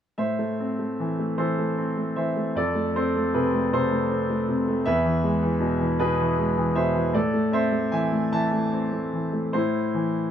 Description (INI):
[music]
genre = classical, lyrical solo piano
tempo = 51 BPM (dotted quarters)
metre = 6/8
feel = uneven beats, rubato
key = A harmonic minor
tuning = A4 = 440 Hz
[part]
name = bright concert grand piano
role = solo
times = 0.2-10.3 s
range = E2 to A5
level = -22 LUFS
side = equal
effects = none
[sound]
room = moderate studio reverb, RT60 0.6 s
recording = none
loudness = -22 LUFS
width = side -9 dB against mid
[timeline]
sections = 0.2-9.6 A section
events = none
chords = 0.2 Am; 2.6 F; 4.9 E; 7.1 Am